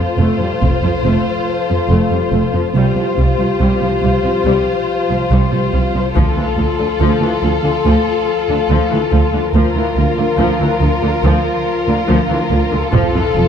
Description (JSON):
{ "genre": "cinematic, epic orchestral film score", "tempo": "71 BPM", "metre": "4/4", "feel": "straight", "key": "F major", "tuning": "A4 = 438 Hz", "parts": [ { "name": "warm symphonic violin section", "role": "melody", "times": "0.0-13.5 s", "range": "A4 to C5", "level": "-23 LUFS", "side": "left 6 dB", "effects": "none" }, { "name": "rich symphonic violin section", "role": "second line", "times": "0.0-13.5 s", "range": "F4", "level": "-22 LUFS", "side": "left 1 dB", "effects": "none" }, { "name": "warm symphonic viola section", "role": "accompaniment", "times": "0.0-13.4 s", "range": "D3 to A3", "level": "-22 LUFS", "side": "equal", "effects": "none" }, { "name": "warm French horn section", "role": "sustained chords", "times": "0.0-13.5 s", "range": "F3 to Bb4", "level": "-20 LUFS", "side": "left 6 dB", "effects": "none" }, { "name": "dark symphonic cello section", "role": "bass", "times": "0.0-13.4 s", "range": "C2 to F2", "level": "-18 LUFS", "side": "right 2 dB", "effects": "none" }, { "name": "warm symphonic double bass section", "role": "bass", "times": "0.2-13.4 s", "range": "F1 to D2", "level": "-18 LUFS", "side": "right 2 dB", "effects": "none" }, { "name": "taiko ensemble", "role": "drums", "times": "0.6-1.0, 6.2-7.8, 12.9-13.5 s", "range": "none", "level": "-21 LUFS", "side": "left 1 dB", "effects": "none" } ], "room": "moderate scoring stage reverb, RT60 1.9 s", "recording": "dark, warm production", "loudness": "-12 LUFS", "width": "side -8 dB against mid", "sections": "0.0-13.5 A section", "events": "none", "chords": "0.0 F; 2.8 Csus4; 6.2 Dm; 9.5 Bb/D; 12.9 F" }